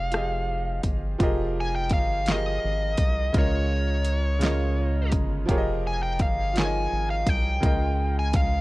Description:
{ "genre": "slow six-eight R&B", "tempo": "56 BPM (dotted quarters)", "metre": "6/8", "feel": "straight", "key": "F minor", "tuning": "A4 = 440 Hz", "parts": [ { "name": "smooth overdriven lead guitar", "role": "melody", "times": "0.0-8.6 s", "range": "Db5 to Ab5", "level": "-29 LUFS", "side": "equal", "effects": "none" }, { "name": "warm grand piano", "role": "accompaniment", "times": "0.0-8.6 s", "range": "Db3 to F5", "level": "-30 LUFS", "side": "right 2 dB", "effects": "none" }, { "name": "round analog bass", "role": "bass", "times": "0.0-8.6 s", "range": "F1 to Db2", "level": "-27 LUFS", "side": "equal", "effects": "none" }, { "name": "pop drum kit", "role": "drums", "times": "0.1-8.5 s", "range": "hi-hat, kick drum, rim click, snare drum", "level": "-25 LUFS", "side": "equal", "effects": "none" } ], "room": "little or no reverb", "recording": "worn, warbling old tape, cassette tape, warbly pitch drift", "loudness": "-22 LUFS", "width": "side -19 dB against mid", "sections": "0.0-1.2 A section; 1.2-8.6 B section", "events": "none", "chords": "0.0 Fm7; 1.2 Fm11; 3.3 Db6; 5.5 Fm11; 7.6 Db6" }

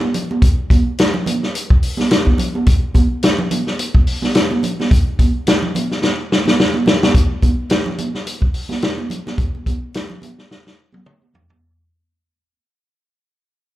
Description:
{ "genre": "funk", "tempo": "107 BPM", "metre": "4/4", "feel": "swing 56% on 16ths", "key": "none", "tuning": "none", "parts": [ { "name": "congas", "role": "percussion", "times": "0.0-11.6 s", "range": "none", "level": "-22 LUFS", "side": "right 2 dB", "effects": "none" }, { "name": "vintage drum kit", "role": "drums", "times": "0.1-11.6 s", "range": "hi-hat, kick drum, snare drum, toms", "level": "-15 LUFS", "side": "equal", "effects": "none" } ], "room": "light reverb, studio reverb", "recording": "live gig heard through the venue's PA, club reverb", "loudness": "-14 LUFS", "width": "side -15 dB against mid", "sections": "0.0-7.1 A section; 7.1-11.6 B section", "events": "drum fill 6.0-7.1, 10.5-11.6; fade-out 7.1-11.6", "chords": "none" }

